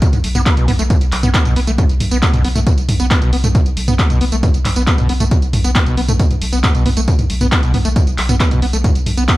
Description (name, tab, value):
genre	driving peak-time techno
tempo	136 BPM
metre	4/4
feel	straight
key	unclear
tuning	A4 = 440 Hz
part	overdriven acid bass	riff	0.0-9.4 s	B2 to B3	-20 LUFS	equal	distortion, ensemble chorus, cassette tape, sidechain pumping, digital delay
part	electronic kick drum	drums	0.0-9.4 s	none	-15 LUFS	equal	none
part	punchy analog drum machine	drums	0.0-9.4 s	handclaps, hi-hat, tambourine, toms	-19 LUFS	equal	sidechain pumping on hats, sidechain pumping on toms, sidechain pumping on cymbals, sidechain pumping on perc
part	saturated sub bass	bass	0.1-9.3 s	B1	-19 LUFS	equal	overdrive, sidechain pumping, low-pass filter
room	light reverb, digital ambience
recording	dark, warm production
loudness	-12 LUFS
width	side -18 dB against mid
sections	0.0-9.4 A section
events	none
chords	none